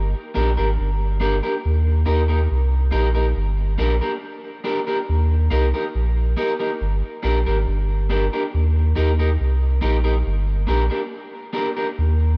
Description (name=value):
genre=roots reggae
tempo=70 BPM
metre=4/4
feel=straight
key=unclear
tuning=A4 = 440 Hz
part: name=warm sub bass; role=bass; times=0.0-12.4 s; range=G1 to Eb2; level=-21 LUFS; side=equal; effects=none
part: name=electric guitar at the edge of break-up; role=accompaniment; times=0.3-11.9 s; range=Bb3 to Bb4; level=-26 LUFS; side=equal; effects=spring reverb, dub echo
room=light reverb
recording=dark, warm production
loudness=-21 LUFS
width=mono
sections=0.0-12.4 A section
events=none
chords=0.0 Gm; 1.6 Eb; 3.4 Gm; 5.1 Eb; 6.8 Gm; 8.5 Eb; 10.2 Gm